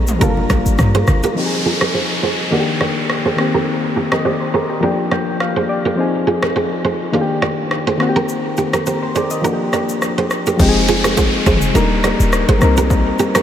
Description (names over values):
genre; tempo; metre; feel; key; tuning
afrobeats; 104 BPM; 4/4; swing 55% on 16ths; C minor; A4 = 440 Hz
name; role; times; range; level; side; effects
soft electric-piano-like synth keys; accompaniment; 0.0-13.4 s; Eb3 to G5; -18 LUFS; left 3 dB; chorus, low-pass filter
short 808-style bass; bass; 0.0-1.2, 10.6-13.1 s; Eb1 to G2; -17 LUFS; equal; none
deep house drum kit; drums; 0.1-13.4 s; crash cymbal, kick drum, rim click, shaker, toms; -22 LUFS; equal; none
nylon-string guitar; riff; 0.2-13.4 s; Eb4 to D5; -20 LUFS; right 4 dB; low-pass filter, analog delay
congas; percussion; 0.2-1.2 s; none; -27 LUFS; right 1 dB; none
downlifter; sound effects; 1.4-6.0, 10.6-13.4 s; none; -24 LUFS; equal; none
room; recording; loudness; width
moderate huge ambient reverb, RT60 7.7 s; dreamy mix soaked in reverb; -14 LUFS; side -10 dB against mid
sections
0.0-1.4 A section; 1.4-10.6 B section; 10.6-13.4 A section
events
filter sweep 1.4-10.6; synth keys fill 4.8-6.0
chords
0.2 Gm7; 1.4 Fm7; 2.5 Ebmaj7; 4.8 Gm7; 6.0 Fm7; 7.1 Ebmaj7; 8.0 Cm7; 9.4 Gm7; 10.6 Fm7; 11.8 Ebmaj7; 12.6 Cm7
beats
0.21 0.79 | 1.37 1.94 2.52 3.10 | 3.67 4.25 4.83 5.40 | 5.98 6.56 7.13 7.71 | 8.29 8.87 9.44 10.02 | 10.60 11.17 11.75 12.33 | 12.90